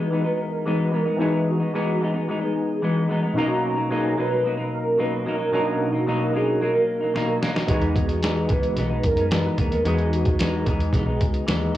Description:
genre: indie pop, bedroom pop.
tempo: 111 BPM.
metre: 4/4.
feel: straight.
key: E lydian.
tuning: A4 = 440 Hz.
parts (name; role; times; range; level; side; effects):
warm velvety synth lead; melody; 0.0-11.7 s; F#4 to B4; -27 LUFS; right 1 dB; ensemble chorus.
semi-hollow electric guitar; accompaniment; 0.0-11.8 s; B2 to D#4; -25 LUFS; left 2 dB; wide subtle chorus, vibrato effect.
warbly lo-fi synth keys; accompaniment; 0.0-11.8 s; B2 to A#5; -26 LUFS; right 1 dB; chorus, phaser, cassette tape.
lo-fi sampler-style drum kit; drums; 7.2-11.8 s; hi-hat, kick drum, snare drum; -24 LUFS; equal; none.
vintage muted fingered electric bass; bass; 7.7-11.8 s; B1 to F#2; -26 LUFS; equal; none.
room: moderate studio reverb, RT60 0.7 s.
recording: dry, gritty hardware recording, small room ambience.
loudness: -20 LUFS.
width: side -13 dB against mid.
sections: 0.0-11.8 A section.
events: drum fill 7.1-7.7.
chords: 0.0 Emaj7; 3.4 Bmaj7; 7.7 Emaj7.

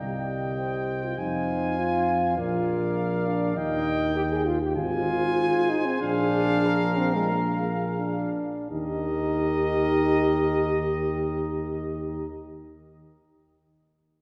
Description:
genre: classical, brass quintet.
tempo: 82-102 BPM.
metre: 4/4.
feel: rubato.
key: Eb major.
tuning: A4 = 441 Hz.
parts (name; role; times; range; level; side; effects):
bright trumpet; melody; 0.0-12.3 s; Eb5 to Ab5; -35 LUFS; equal; none.
mellow flugelhorn; second line; 0.0-12.3 s; Bb4 to F5; -36 LUFS; equal; none.
warm French horn; accompaniment; 0.0-12.3 s; G4 to D5; -33 LUFS; equal; none.
warm euphonium; accompaniment; 0.0-12.3 s; Ab3 to Ab4; -30 LUFS; equal; none.
mellow tuba; bass; 0.0-12.3 s; Ab1 to F2; -31 LUFS; equal; none.
room: wet church reverb, RT60 2.8 s.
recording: heard from further back in the room.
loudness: -26 LUFS.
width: mono.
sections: 0.0-8.7 A section; 8.7-11.5 B section.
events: slowing down 2.4-8.7.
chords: 0.0 Cm; 1.2 Fm7; 2.4 Bb; 3.6 Eb; 4.8 Ab; 6.0 Bb7; 8.7 Eb.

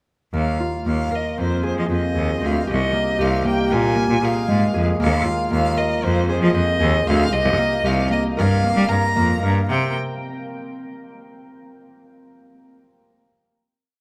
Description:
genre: contemporary instrumental, chamber music in an uneven meter.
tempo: 231 BPM (eighths).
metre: 9/8.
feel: straight.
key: C minor.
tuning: A4 = 440 Hz.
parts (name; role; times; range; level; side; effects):
concert harp; arpeggios; 0.3-9.9 s; Ab3 to Bb4; -26 LUFS; equal; none.
bright cello; bass; 0.3-9.9 s; C2 to G3; -23 LUFS; equal; none.
rich violin; melody; 0.4-9.9 s; C5 to Bb5; -26 LUFS; equal; none.
room: wet cathedral reverb, RT60 5.5 s.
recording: in a vast, echoing space.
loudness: -20 LUFS.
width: mono.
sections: 0.3-9.7 climax; 9.7-12.0 final chord.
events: none.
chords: 0.3 Ebsus2; 1.4 Fm7; 2.7 Cm7; 3.7 Bb5; 5.0 Ebsus2; 6.0 Fm7; 7.3 Cm7; 8.4 Gm7; 9.7 C5.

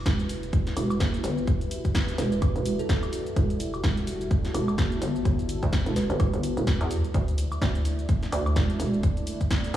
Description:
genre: bass house.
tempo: 127 BPM.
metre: 4/4.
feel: swing 58% on 16ths.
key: E minor.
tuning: A4 = 441 Hz.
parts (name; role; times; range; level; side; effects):
dark analog pad; sustained chords; 0.0-9.8 s; G3 to D5; -33 LUFS; right 1 dB; chorus, sidechain pumping.
hollow knocking FM bass; bass; 0.0-9.8 s; E1 to E2; -27 LUFS; equal; sidechain pumping.
big-room dance drum kit; drums; 0.1-9.8 s; hi-hat, shaker, snare drum, woodblock; -34 LUFS; equal; none.
electronic kick drum; drums; 0.1-9.6 s; none; -25 LUFS; equal; none.
kalimba; melody; 2.2-3.1, 6.0-6.2, 9.7-9.8 s; A4 to B4; -37 LUFS; right 4 dB; tape echo.
room: light reverb.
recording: played on a big sound system in a bare room, large studio reverb, small room ambience.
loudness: -23 LUFS.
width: side -12 dB against mid.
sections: 0.0-9.8 A section.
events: none.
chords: 0.0 Emadd9; 7.1 Dsus2.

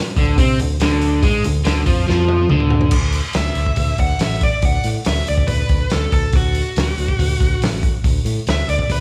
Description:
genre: blues rock power trio and southern rock.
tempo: 141 BPM.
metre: 4/4.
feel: straight.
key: D mixolydian.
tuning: A4 = 440 Hz.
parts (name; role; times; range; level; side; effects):
crunchy overdriven guitar; riff; 0.2-2.9 s; D3 to C4; -21 LUFS; equal; none.
overdriven fingered electric bass; bass; 0.2-9.0 s; A1 to C3; -22 LUFS; equal; none.
vintage drum kit; drums; 0.2-9.0 s; crash cymbal, hi-hat, kick drum, snare drum, toms; -21 LUFS; equal; none.
bluesy overdriven lead guitar; second line; 3.4-9.0 s; F#4 to F#5; -25 LUFS; equal; distortion, digital delay.
room: little or no reverb.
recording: small room ambience.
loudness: -17 LUFS.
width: mono.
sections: 0.0-2.9 A section; 2.9-9.0 B section.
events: drum fill 2.1-2.9; lead electric guitar solo 2.9-9.0.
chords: 0.0 Dm7b5; 2.9 D.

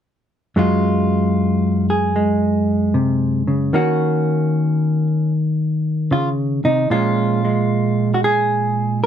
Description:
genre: solo jazz.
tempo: 76 BPM.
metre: 4/4.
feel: swing 67% on 8ths.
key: unclear.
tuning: A4 = 440 Hz.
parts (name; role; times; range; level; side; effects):
hollow-body jazz guitar; solo; 0.6-9.1 s; Gb2 to Ab4; -16 LUFS; equal; none.
room: light reverb.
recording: dark, warm production.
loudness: -16 LUFS.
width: side -9 dB against mid.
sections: 0.6-6.9 A section; 6.9-9.1 B section.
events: none.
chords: 0.6 Gbsus2; 3.7 Ebm7; 6.9 Bbm7.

